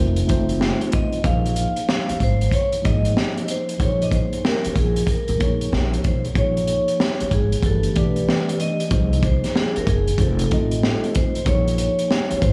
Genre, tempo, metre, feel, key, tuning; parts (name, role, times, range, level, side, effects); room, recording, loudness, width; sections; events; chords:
hip hop, jazz-hop; 94 BPM; 4/4; swing 64% on 16ths; Bb minor; A4 = 440 Hz
mellow tine electric piano; accompaniment; 0.0-12.5 s; E3 to Eb5; -28 LUFS; equal
upright bass; bass; 0.0-12.5 s; F1 to Bb2; -25 LUFS; equal
crunchy breakbeat drum kit; drums; 0.2-12.5 s; hi-hat, kick drum, snare drum; -24 LUFS; equal
vibraphone with medium mallets; melody; 0.9-12.5 s; Ab4 to F5; -28 LUFS; equal; tape echo
light reverb, small room ambience; small room reverb; -20 LUFS; mono
0.0-6.4 A section; 6.4-12.5 A section
0.0 F7; 1.2 Bbm7; 7.6 G; 8.9 Cm7b5; 10.2 F7; 11.5 Bbm7